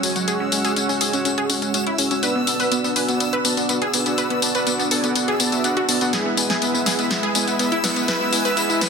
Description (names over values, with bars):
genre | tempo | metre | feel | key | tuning
progressive house | 123 BPM | 4/4 | straight | unclear | A4 = 441 Hz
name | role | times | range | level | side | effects
wide unison pluck | arpeggios | 0.0-8.9 s | F#3 to B4 | -23 LUFS | equal | cassette tape, ping-pong delay
soft supersaw | stabs | 0.0-8.9 s | G#3 to A5 | -23 LUFS | right 2 dB | cassette tape, low-pass filter, ping-pong delay
fat analog bass | bass | 0.0-8.9 s | F#1 to F#2 | -39 LUFS | equal | none
house drum kit | drums | 0.0-8.9 s | hi-hat, snare drum, tambourine | -22 LUFS | left 3 dB | none
backwards swelling texture | texture | 0.0-8.9 s | E6 | -30 LUFS | equal | built-in reverb
riser | sound effects | 8.6-8.9 s | none | barely audible | none | none
room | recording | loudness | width
moderate lush hall reverb, RT60 1.6 s | dense, heavily limited modern master, high-pass filter | -18 LUFS | side -5 dB against mid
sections
0.0-8.9 A section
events
build-up 0.0-8.9; filter sweep on supersaw synth 0.0-8.9; drum fill 6.1-8.9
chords
0.0 F#sus2; 2.2 Bm; 6.1 E